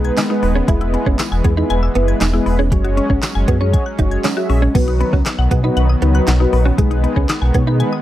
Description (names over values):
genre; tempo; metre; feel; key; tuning
dance-pop; 118 BPM; 4/4; straight; B major; A4 = 441 Hz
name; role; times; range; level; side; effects
mellow synth brass; accompaniment; 0.0-7.9 s; F#3 to E5; -21 LUFS; left 1 dB; chorus, sidechain pumping
lush unison pad; sustained chords; 0.0-8.0 s; D#3 to C#4; -24 LUFS; equal; chorus, sidechain pumping
mallet-like synth pluck; arpeggios; 0.0-8.0 s; F#3 to G#6; -26 LUFS; left 6 dB; chorus, sidechain pumping, slapback echo
sub bass with octave; bass; 0.0-7.8 s; D#1 to B2; -16 LUFS; equal; sidechain pumping
smooth R&B drum kit; drums; 0.0-7.9 s; crash cymbal, handclaps, hi-hat, kick drum, snare drum; -18 LUFS; equal; none
direct-recorded clean electric guitar; riff; 0.2-7.8 s; F#3 to E4; -22 LUFS; right 5 dB; ensemble chorus
tambourine; percussion; 0.2-4.4 s; none; -34 LUFS; right 14 dB; none
room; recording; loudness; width
digital ambience; dry, close 1970s-style studio recording; -13 LUFS; side -13 dB against mid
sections
0.0-4.8 A section; 4.8-8.0 A section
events
none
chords
0.0 G#m/B; 0.7 E; 2.7 F#sus2; 4.8 B; 6.8 G#m/B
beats
0.17 | 0.68 1.19 1.70 2.21 | 2.72 3.23 3.73 4.24 | 4.75 5.26 5.77 6.28 | 6.78 7.29 7.80